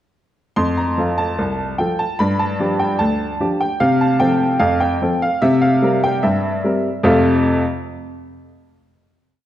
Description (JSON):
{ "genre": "ragtime piano", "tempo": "74 BPM", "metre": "2/4", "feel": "straight", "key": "F major", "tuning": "A4 = 440 Hz", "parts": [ { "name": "clear upright piano", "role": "solo", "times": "0.6-7.6 s", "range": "C2 to C6", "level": "-15 LUFS", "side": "equal", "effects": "none" } ], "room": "moderate concert hall reverb, RT60 1.7 s", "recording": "none", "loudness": "-15 LUFS", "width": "side -12 dB against mid", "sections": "0.6-7.0 A section; 7.0-8.7 final chord", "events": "none", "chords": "0.6 F; 2.2 G5; 3.8 F/C; 5.4 C7; 7.0 F" }